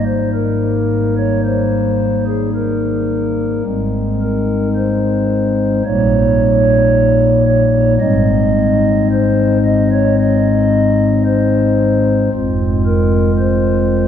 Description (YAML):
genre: classical, chorale-style piece for pipe organ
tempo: 55 BPM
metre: 4/4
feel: rubato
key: Ab major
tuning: A4 = 438 Hz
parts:
  - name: pipe organ, stopped flute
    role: solo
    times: 0.0-14.1 s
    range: F1 to Eb5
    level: -12 LUFS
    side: equal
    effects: none
room: wet cathedral reverb, RT60 4.5 s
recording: worn, warbling old tape, cassette tape, warbly pitch drift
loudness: -12 LUFS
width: side -9 dB against mid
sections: 0.0-14.1 A section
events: none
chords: 0.0 Eb/Ab; 3.7 Ab; 5.9 Eb7/Bb; 8.0 Ab; 12.3 Fm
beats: 0.33 1.44 2.54 | 3.66 4.77 5.86 6.94 | 8.02 9.12 10.19 11.26 | 12.33 13.40